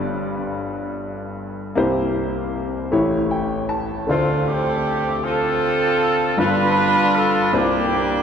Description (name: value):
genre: gospel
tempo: 52 BPM (dotted quarters)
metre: 6/8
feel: straight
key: unclear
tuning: A4 = 440 Hz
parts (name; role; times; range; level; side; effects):
- warm baby grand piano; accompaniment; 0.0-8.2 s; G1 to A5; -21 LUFS; left 2 dB; none
- warm horn section; melody; 4.1-8.2 s; A3 to B4; -18 LUFS; right 1 dB; none
room: wet cathedral reverb, RT60 4.7 s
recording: recorded in a church or concert hall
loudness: -18 LUFS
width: side -7 dB against mid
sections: 0.0-8.2 A section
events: grand piano fill 2.9-4.1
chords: 0.0 G7; 1.8 C7; 2.9 A7; 4.1 Dm7; 6.4 G7; 7.5 C9sus4